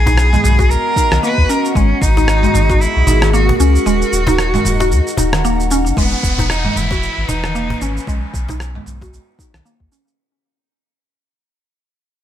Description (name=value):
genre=organic downtempo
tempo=114 BPM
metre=4/4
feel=swing 58% on 16ths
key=unclear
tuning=A4 = 440 Hz
part: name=rich cello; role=melody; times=0.0-8.1 s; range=B3 to B4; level=-19 LUFS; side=right 1 dB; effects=ping-pong delay
part: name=warbly tape-like pad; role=sustained chords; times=0.0-10.2 s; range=E3 to B5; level=-23 LUFS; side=equal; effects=chorus, built-in reverb, sidechain pumping
part: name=warm sub bass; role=bass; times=0.0-9.9 s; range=D#1 to D#2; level=-16 LUFS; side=equal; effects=sidechain pumping
part: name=mallet-like synth pluck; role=arpeggios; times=0.1-10.2 s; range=D#3 to F#4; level=-20 LUFS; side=equal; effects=wide subtle chorus, ping-pong delay
part: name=dusty soul sampler-style drum kit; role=drums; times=0.1-10.2 s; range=rim click, shaker, toms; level=-22 LUFS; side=right 1 dB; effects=none
part: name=electronic kick drum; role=drums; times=0.1-2.8, 6.0-9.9 s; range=none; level=-18 LUFS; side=equal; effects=none
part: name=cajon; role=percussion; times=0.1-9.1 s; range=none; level=-22 LUFS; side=left 2 dB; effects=none
part: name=downlifter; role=sound effects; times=6.0-10.2 s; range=none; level=-24 LUFS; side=equal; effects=none
room=light reverb, digital ambience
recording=none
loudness=-12 LUFS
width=side -10 dB against mid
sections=0.0-6.0 A section; 6.0-10.2 B section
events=break 3.9-6.0; fade-out 6.0-10.2; filter sweep on synth pluck 6.0-10.2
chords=0.0 B; 1.8 G#madd9; 3.9 D#m; 6.0 E; 8.1 B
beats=0.17 0.70 1.23 | 1.75 2.28 2.81 3.33 | 3.86 4.38 4.91 5.44 | 5.96 6.49 7.02 7.54 | 8.07 8.60 9.12 9.65